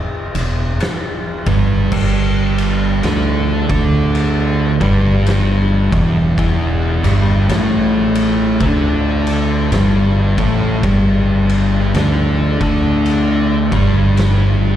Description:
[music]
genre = stoner and doom metal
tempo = 54 BPM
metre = 4/4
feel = swing 59% on 8ths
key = unclear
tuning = A4 = 439 Hz
[part]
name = growling fingered electric bass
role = bass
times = 0.3-14.8 s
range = E1 to D2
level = -16 LUFS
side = equal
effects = overdrive
[part]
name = oversized low-tuned drum kit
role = drums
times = 0.3-14.5 s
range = crash cymbal, kick drum, ride cymbal, snare drum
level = -21 LUFS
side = left 1 dB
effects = none
[part]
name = thick fuzz guitar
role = riff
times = 0.4-14.8 s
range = E2 to D4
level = -16 LUFS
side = equal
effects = distortion, slapback echo
[sound]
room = studio reverb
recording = live gig heard through the venue's PA, recital hall reverb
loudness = -13 LUFS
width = side -11 dB against mid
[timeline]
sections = 0.0-14.8 A section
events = none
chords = 0.0 E5; 1.9 G5

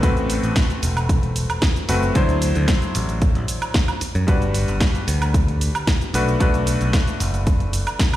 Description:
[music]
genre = nu-disco, nu disco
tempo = 113 BPM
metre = 4/4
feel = straight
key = A dorian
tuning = A4 = 441 Hz
[part]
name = warm electric grand piano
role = accompaniment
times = 0.0-8.2 s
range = F#3 to C5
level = -24 LUFS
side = left 2 dB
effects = sidechain pumping, tape echo
[part]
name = modern bright picked electric bass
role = bass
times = 0.0-8.2 s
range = E1 to F#2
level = -21 LUFS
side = equal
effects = tube saturation
[part]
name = electronic kick drum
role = drums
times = 0.0-8.1 s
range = none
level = -18 LUFS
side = equal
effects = none
[part]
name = house drum kit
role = drums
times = 0.0-8.2 s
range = hi-hat, shaker, snare drum, woodblock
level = -26 LUFS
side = right 1 dB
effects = none
[sound]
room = little or no reverb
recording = played on a big sound system in a bare room, stone room reverb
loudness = -17 LUFS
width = side -14 dB against mid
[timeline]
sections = 0.0-8.2 A section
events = none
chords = 0.0 Am69; 2.2 D9; 4.3 Gmaj7; 6.1 Bm7

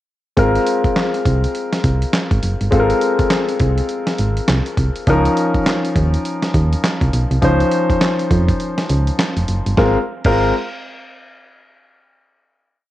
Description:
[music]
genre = R&B, new jack swing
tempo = 102 BPM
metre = 4/4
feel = swing 61% on 16ths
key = Ab major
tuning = A4 = 440 Hz
[part]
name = warm concert grand piano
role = accompaniment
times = 0.4-10.5 s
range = F3 to C5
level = -18 LUFS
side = left 2 dB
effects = none
[part]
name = solid FM bass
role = bass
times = 0.4-10.5 s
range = F1 to F2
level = -17 LUFS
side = right 1 dB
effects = none
[part]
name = dusty soul sampler-style drum kit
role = drums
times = 0.4-10.4 s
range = crash cymbal, handclaps, hi-hat, kick drum, snare drum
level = -20 LUFS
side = right 1 dB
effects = cassette tape
[sound]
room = light reverb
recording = home recording on cassette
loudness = -14 LUFS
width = side -14 dB against mid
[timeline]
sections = 0.4-9.8 verse; 9.8-12.1 final chord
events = break 8.6-9.8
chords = 0.4 Ab69; 5.1 Db69; 9.8 Ab69

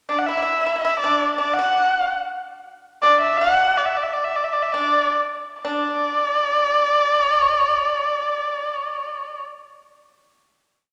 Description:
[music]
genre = chinese traditional, Chinese chamber ensemble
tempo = 56-83 BPM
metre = 2/4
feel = rubato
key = D gong mode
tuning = A4 = 440 Hz
[part]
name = dark erhu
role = melody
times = 0.1-9.4 s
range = D5 to F#5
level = -21 LUFS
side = equal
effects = none
[part]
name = pipa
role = second line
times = 0.1-9.4 s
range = D4 to F#4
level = -31 LUFS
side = equal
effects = none
[sound]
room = wet recital hall reverb, RT60 1.9 s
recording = none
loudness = -20 LUFS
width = mono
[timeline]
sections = 0.0-5.7 A section; 5.7-9.8 final note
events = slowing down 2.3-5.7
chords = none

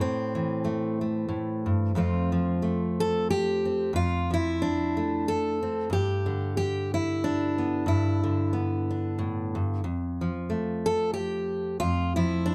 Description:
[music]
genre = folk, solo fingerstyle acoustic guitar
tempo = 92 BPM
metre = 3/4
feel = swing 56% on 8ths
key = unclear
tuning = A4 = 440 Hz
[part]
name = fingerpicked steel-string acoustic guitar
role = solo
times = 0.0-12.5 s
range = F2 to A4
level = -27 LUFS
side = equal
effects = none
[sound]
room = light reverb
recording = dark, warm production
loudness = -27 LUFS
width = mono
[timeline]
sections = 0.0-2.0 A section; 2.0-12.5 B section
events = none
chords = 0.0 Am; 2.0 F; 5.9 G6; 9.8 F

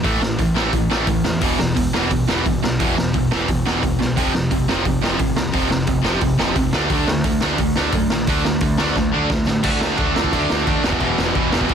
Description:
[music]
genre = punk rock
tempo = 175 BPM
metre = 4/4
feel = straight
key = unclear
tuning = A4 = 440 Hz
[part]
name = overdriven electric guitar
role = riff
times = 0.0-11.7 s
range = E2 to D4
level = -21 LUFS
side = right 13 dB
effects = none
[part]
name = sludgy distorted guitar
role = riff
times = 0.0-11.7 s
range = E2 to D4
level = -22 LUFS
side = left 11 dB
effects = overdrive
[part]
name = growling picked electric bass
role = bass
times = 0.0-11.7 s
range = E1 to A2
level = -26 LUFS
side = equal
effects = overdrive
[part]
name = raw garage drum kit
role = drums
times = 0.0-11.7 s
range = crash cymbal, hi-hat, kick drum, snare drum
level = -21 LUFS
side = equal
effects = none
[sound]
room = little or no reverb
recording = dense, heavily limited modern master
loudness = -16 LUFS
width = side -7 dB against mid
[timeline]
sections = 0.0-9.7 A section; 9.7-11.7 B section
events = drum fill 4.0, 9.0-9.7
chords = 0.0 A5; 1.4 E5; 4.2 F5; 6.7 D5; 10.8 E5

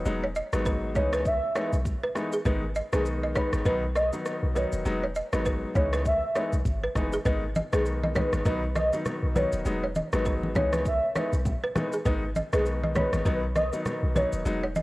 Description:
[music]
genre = afrobeats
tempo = 100 BPM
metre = 4/4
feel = swing 58% on 16ths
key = unclear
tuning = A4 = 442 Hz
[part]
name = clear baby grand piano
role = accompaniment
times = 0.0-14.6 s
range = D#3 to D#4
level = -31 LUFS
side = left 1 dB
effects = cassette tape
[part]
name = clean 808-style bass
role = bass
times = 0.0-14.8 s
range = D#1 to C#2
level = -30 LUFS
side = equal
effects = none
[part]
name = afro-pop drum kit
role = drums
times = 0.1-14.8 s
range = kick drum, rim click, shaker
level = -32 LUFS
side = equal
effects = cassette tape
[part]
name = balafon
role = riff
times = 0.2-14.8 s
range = G#4 to D#5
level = -32 LUFS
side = right 2 dB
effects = cassette tape
[part]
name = warm velvety synth lead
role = melody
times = 0.5-14.3 s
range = G#4 to E5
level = -30 LUFS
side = equal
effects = chorus, cassette tape, tape echo
[part]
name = congas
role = percussion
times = 7.6-14.8 s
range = none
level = -31 LUFS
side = left 1 dB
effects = none
[sound]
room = digital ambience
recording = home recording on cassette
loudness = -24 LUFS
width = side -19 dB against mid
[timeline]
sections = 0.0-14.8 A section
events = none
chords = 0.1 Emaj7; 1.0 C#m7; 2.5 G#m; 3.7 B; 4.9 Emaj7; 5.8 C#m7; 7.3 G#m; 8.5 B; 9.7 Emaj7; 10.6 C#m7; 12.1 G#m; 13.3 B

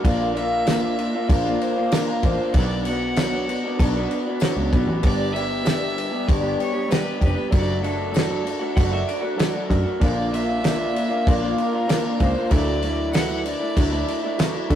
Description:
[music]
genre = folk rock and heartland rock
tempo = 96 BPM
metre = 4/4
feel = straight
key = D major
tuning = A4 = 440 Hz
[part]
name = pedal steel guitar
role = second line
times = 0.0, 3.8-10.0 s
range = A4 to F#5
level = -33 LUFS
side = right 2 dB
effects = none
[part]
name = overdriven reed electric piano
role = accompaniment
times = 0.0-14.8 s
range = D4 to C#6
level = -32 LUFS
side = right 2 dB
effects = fast tremolo
[part]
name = picked old ladder-braced acoustic guitar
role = accompaniment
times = 0.0-14.8 s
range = G2 to G4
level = -30 LUFS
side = left 3 dB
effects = none
[part]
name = electric guitar through a small old amp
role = riff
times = 0.0-14.8 s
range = G2 to G4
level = -25 LUFS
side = equal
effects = spring reverb
[part]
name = picked electric bass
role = bass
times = 0.0-14.8 s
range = F1 to D3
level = -26 LUFS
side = equal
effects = none
[part]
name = damped 70s drum kit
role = drums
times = 0.0-14.8 s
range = crash cymbal, kick drum, snare drum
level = -23 LUFS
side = equal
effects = none
[part]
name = clear fiddle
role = melody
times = 0.1-14.7 s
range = A4 to F#5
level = -30 LUFS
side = equal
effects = none
[part]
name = tambourine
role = percussion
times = 0.7-14.5 s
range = none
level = -44 LUFS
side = left 4 dB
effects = none
[sound]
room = moderate studio reverb, RT60 0.5 s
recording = rough rehearsal-room recording, warm saturation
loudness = -19 LUFS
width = side -10 dB against mid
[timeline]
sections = 0.0-14.8 A section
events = none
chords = 0.0 Bb; 2.5 Bm; 5.0 G; 7.5 D/F#; 10.0 Bb; 12.5 Dadd9

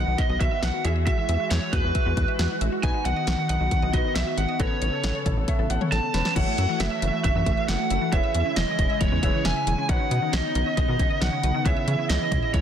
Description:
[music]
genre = synth-pop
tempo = 136 BPM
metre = 4/4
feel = straight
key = unclear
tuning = A4 = 443 Hz
[part]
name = lead guitar through a small cranked amp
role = melody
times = 0.0-12.6 s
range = B4 to A5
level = -27 LUFS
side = right 2 dB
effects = overdrive
[part]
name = clear concert grand piano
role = accompaniment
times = 0.0-12.6 s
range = C#4 to B5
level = -34 LUFS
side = left 1 dB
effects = none
[part]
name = chorused pulse-width pad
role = sustained chords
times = 0.0-12.6 s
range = C#3 to A4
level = -31 LUFS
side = equal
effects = none
[part]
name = resonant blip pluck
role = arpeggios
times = 0.0-12.6 s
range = C#3 to E5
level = -33 LUFS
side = left 2 dB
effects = chorus, tape echo
[part]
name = rubbery square bass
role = bass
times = 0.0-12.6 s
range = E1 to C#3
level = -26 LUFS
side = equal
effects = none
[part]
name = house drum kit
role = drums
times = 0.2-12.6 s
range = crash cymbal, hi-hat, kick drum, snare drum, toms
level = -26 LUFS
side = equal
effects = none
[sound]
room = light reverb, digital ambience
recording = dense, heavily limited modern master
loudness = -21 LUFS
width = side -9 dB against mid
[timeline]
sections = 0.0-6.4 A section; 6.4-12.6 B section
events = grand piano fill 5.0-6.4; drum fill 5.9-6.4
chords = 0.0 B; 0.8 Eadd9; 2.8 B; 4.6 Aadd9; 6.4 F#m7; 8.1 E6; 9.9 Badd9; 11.7 C#m7

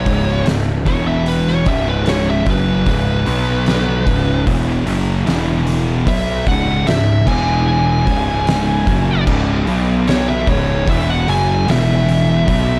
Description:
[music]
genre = stoner and doom metal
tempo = 75 BPM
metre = 4/4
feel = straight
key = C# minor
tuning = A4 = 440 Hz
[part]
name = fuzz lead guitar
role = melody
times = 0.0-12.8 s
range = B4 to G#5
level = -24 LUFS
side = equal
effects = distortion, tape echo
[part]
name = thick fuzz guitar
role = riff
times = 0.0-12.8 s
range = C#2 to B3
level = -22 LUFS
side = equal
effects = distortion
[part]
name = thick fuzz guitar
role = riff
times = 0.0-12.8 s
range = C#2 to B3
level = -23 LUFS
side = equal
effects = distortion
[part]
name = fuzz picked electric bass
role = bass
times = 0.0-12.8 s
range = C#1 to B1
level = -22 LUFS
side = equal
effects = overdrive
[part]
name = oversized low-tuned drum kit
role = drums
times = 0.1-12.7 s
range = crash cymbal, hi-hat, kick drum, snare drum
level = -23 LUFS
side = equal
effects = none
[sound]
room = light reverb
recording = dark, warm production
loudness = -16 LUFS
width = mono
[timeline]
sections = 0.0-12.8 A section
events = lead electric guitar solo 0.0-12.8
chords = 0.0 C#5; 0.9 E5; 1.7 C#5; 3.3 B5; 4.1 C#m; 5.3 E5; 6.1 C#5; 7.3 E5; 8.1 C#5; 9.7 B5; 10.5 C#m; 11.7 E5

